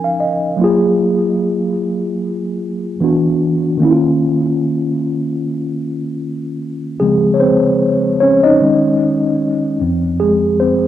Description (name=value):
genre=hip hop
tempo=75 BPM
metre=4/4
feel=swing 58% on 16ths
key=Db major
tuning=A4 = 435 Hz
part: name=mellow tine electric piano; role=solo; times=0.0-10.9 s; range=F2 to Ab5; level=-13 LUFS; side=equal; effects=medium stereo tremolo, low-pass filter, analog delay
room=wet studio reverb, RT60 0.7 s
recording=rough home demo mix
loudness=-13 LUFS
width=side -12 dB against mid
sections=0.0-7.0 A section; 7.0-10.9 B section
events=tine electric piano fill 0.0-0.6; tine electric piano solo 7.0-10.9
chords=0.0 Db69; 0.6 Gbmaj9; 3.0 D69; 3.8 Db69; 7.0 Dbmaj9; 8.6 Eb7sus4; 9.8 Dbmaj7/F (rootless)